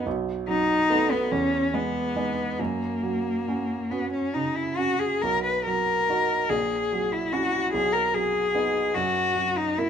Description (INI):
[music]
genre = classical, romantic duo for cello and grand piano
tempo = 47 BPM (dotted quarters)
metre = 6/8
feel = uneven beats, rubato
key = B major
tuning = A4 = 439 Hz
[part]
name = rich cello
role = melody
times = 0.0-9.9 s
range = A#3 to B4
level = -24 LUFS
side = left 2 dB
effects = none
[part]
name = warm baby grand piano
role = accompaniment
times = 0.0-9.9 s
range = A#1 to F#4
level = -29 LUFS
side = right 6 dB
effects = none
[sound]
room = moderate large studio reverb, RT60 1.2 s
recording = minimal, uncompressed stereo recording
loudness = -23 LUFS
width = side -8 dB against mid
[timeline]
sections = 0.0-9.9 A section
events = none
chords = 0.1 B7; 1.3 Emaj7; 2.6 F#; 5.2 B; 6.5 F#7/A#; 7.7 B; 8.9 F#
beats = | 0.06 1.31 | 2.59 3.90 | 5.22 6.50 | 7.72 8.94